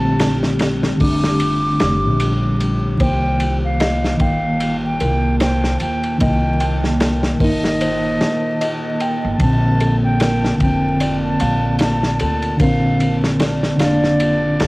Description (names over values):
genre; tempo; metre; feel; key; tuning
trip hop; 75 BPM; 4/4; swing 58% on 16ths; unclear; A4 = 443 Hz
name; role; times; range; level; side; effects
concert flute; melody; 0.0-14.7 s; D5 to D6; -23 LUFS; equal; cassette tape, tape echo
mellow reed electric piano; accompaniment; 0.0-14.7 s; D3 to Eb4; -19 LUFS; equal; fast tremolo
deep dark ambient pad; sustained chords; 0.0-14.7 s; G3 to A5; -25 LUFS; right 1 dB; chorus, built-in reverb
upright bass; bass; 0.0-14.7 s; F1 to Eb2; -21 LUFS; equal; none
crunchy breakbeat drum kit; drums; 0.2-14.7 s; hi-hat, kick drum, ride cymbal, snare drum; -22 LUFS; equal; cassette tape
music box; arpeggios; 3.0-14.7 s; A4 to G5; -27 LUFS; equal; tape echo
room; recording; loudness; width
light reverb, small room ambience; home recording on cassette, vinyl crackle; -15 LUFS; side -22 dB against mid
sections
0.0-14.7 A section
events
none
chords
0.0 Bbmaj7; 3.0 Cm7; 9.4 Bbmaj7